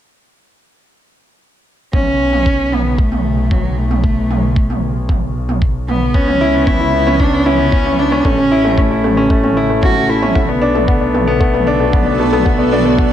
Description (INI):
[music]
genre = piano and strings electronica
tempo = 114 BPM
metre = 4/4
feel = straight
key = unclear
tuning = A4 = 440 Hz
[part]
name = dark cello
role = melody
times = 1.9-10.4 s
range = F#3 to F#4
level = -17 LUFS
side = equal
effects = ping-pong delay
[part]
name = bright studio double bass section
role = bass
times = 1.9-13.1 s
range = A1 to C#2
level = -19 LUFS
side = left 1 dB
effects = sidechain pumping
[part]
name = electronic kick drum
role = drums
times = 1.9-13.1 s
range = none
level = -15 LUFS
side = equal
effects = none
[part]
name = electronic toms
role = drums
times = 1.9-12.8 s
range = none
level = -23 LUFS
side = right 3 dB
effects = none
[part]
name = clear concert grand piano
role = riff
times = 6.1-13.1 s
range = A3 to E4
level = -15 LUFS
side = equal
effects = ping-pong delay
[part]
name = granular cloud pad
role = sustained chords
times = 11.6-13.1 s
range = B3 to D5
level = -20 LUFS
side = right 1 dB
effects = built-in reverb, sidechain pumping
[part]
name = soft round pluck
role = arpeggios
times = 10.4-13.1 s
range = A4 to F#5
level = -22 LUFS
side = left 9 dB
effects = chorus, sidechain pumping, ping-pong delay
[sound]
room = moderate recital hall reverb, RT60 1.2 s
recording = none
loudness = -12 LUFS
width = side -10 dB against mid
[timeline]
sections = 1.9-13.1 A section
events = none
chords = 1.9 F#madd11/B (rootless); 6.1 C#m7; 8.2 A; 10.4 Bm7